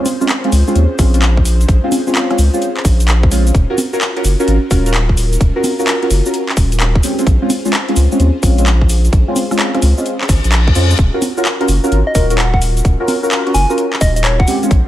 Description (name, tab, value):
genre	UK garage, two-step garage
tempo	129 BPM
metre	4/4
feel	swing 66% on 16ths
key	Eb minor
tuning	A4 = 441 Hz
part	airy breathy pad	sustained chords	0.0-14.9 s	Db4 to C5	-26 LUFS	left 1 dB	chorus, sidechain pumping
part	deep mellow chord stab	stabs	0.0-14.7 s	Ab3 to Bb4	-17 LUFS	equal	chorus, phaser, digital delay
part	garage drum kit	drums	0.1-14.8 s	congas, handclaps, hi-hat, rim click, shaker	-19 LUFS	equal	studio reverb
part	saturated sub bass	bass	0.5-14.8 s	Eb1 to F2	-12 LUFS	equal	none
part	electronic kick drum	drums	1.0-14.8 s	none	-13 LUFS	equal	studio reverb
part	reverse cymbal	sound effects	10.3-11.0 s	none	-24 LUFS	left 4 dB	none
part	soft struck synth lead	melody	12.1-14.5 s	Db5 to Ab5	-20 LUFS	equal	chorus, digital delay
room	digital ambience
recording	none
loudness	-11 LUFS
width	side -13 dB against mid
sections	0.0-14.9 A section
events	reverse cymbal 10.3-11.0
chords	0.0 Bbm9; 3.5 Ebm9; 7.0 Bbm9; 11.0 Ebm9